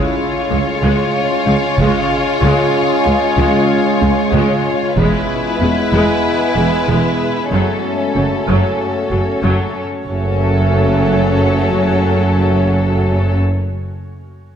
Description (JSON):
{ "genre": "cinematic, hybrid orchestral and electronic film score", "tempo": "94 BPM", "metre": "4/4", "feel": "straight", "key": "unclear", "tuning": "A4 = 442 Hz", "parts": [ { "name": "rich symphonic violin section", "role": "melody", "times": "0.0-13.4 s", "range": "A4 to C#5", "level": "-23 LUFS", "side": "left 4 dB", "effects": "none" }, { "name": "warm symphonic violin section", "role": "second line", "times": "0.0-13.4 s", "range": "C#4 to E#4", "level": "-21 LUFS", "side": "left 2 dB", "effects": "none" }, { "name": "clear symphonic viola section", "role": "accompaniment", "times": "0.0-13.4 s", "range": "F#3 to G#3", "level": "-23 LUFS", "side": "right 2 dB", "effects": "none" }, { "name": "clear trombone section", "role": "sustained chords", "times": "0.0-13.4 s", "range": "C#3 to A3", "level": "-22 LUFS", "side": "right 4 dB", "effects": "none" }, { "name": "dark French horn section", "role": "sustained chords", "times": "0.0-13.4 s", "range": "B3 to F#4", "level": "-23 LUFS", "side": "left 4 dB", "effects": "none" }, { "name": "organ-like drone", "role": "sustained chords", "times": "0.0-13.4 s", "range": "G#3 to E5", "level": "-23 LUFS", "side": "left 1 dB", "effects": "ensemble chorus, built-in reverb, phaser" }, { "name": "thumb-piano-like synth pluck", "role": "arpeggios", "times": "0.0-9.6 s", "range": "C#3 to F#4", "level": "-25 LUFS", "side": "left 2 dB", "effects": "chorus, digital delay" }, { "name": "rich symphonic double bass section", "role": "bass", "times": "0.5-13.4 s", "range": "E1 to C#2", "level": "-20 LUFS", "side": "right 2 dB", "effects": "none" }, { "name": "warm symphonic cello section", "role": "bass", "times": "0.5-13.4 s", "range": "C#2 to F#2", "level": "-20 LUFS", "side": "right 1 dB", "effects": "none" }, { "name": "taiko ensemble", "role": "drums", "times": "1.8-6.2 s", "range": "none", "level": "-26 LUFS", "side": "equal", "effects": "none" } ], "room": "moderate scoring stage reverb, RT60 1.6 s", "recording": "none", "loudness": "-12 LUFS", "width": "side -8 dB against mid", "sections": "0.0-10.1 A section; 10.1-12.6 B section", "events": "none", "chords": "0.0 C#; 5.0 E; 7.5 F#m" }